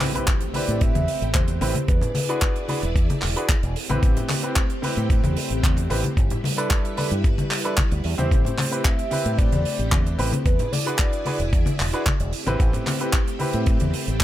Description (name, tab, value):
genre	nu-disco, nu disco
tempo	112 BPM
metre	4/4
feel	straight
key	A minor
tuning	A4 = 440 Hz
part	clear grand piano	accompaniment	0.0-14.2 s	C4 to C5	-29 LUFS	equal	digital delay
part	string machine, full ensemble	sustained chords	0.0-14.2 s	G3 to D5	-31 LUFS	equal	ensemble chorus, sidechain pumping
part	tight funk drum kit	drums	0.0-14.2 s	handclaps, hi-hat	-28 LUFS	right 2 dB	none
part	congas	percussion	0.0-14.2 s	none	-28 LUFS	left 2 dB	none
part	impact	sound effects	0.0-1.9 s	none	-35 LUFS	equal	none
part	electronic kick drum	drums	0.3-14.2 s	none	-21 LUFS	equal	none
part	soft octave-layered synth lead	melody	0.6-3.0, 8.3-11.8 s	B4 to E5	-30 LUFS	equal	chorus, phaser, cassette tape, ping-pong delay
part	fingered electric bass with an envelope filter	bass	0.7-14.2 s	E1 to A2	-25 LUFS	equal	none
room	small room ambience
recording	none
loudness	-20 LUFS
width	side -13 dB against mid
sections	0.0-14.2 A section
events	impact 0.0-1.9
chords	0.0 Am7; 1.9 E7; 3.8 Am7; 6.2 G6; 8.3 Am7; 10.5 E7; 12.3 Am7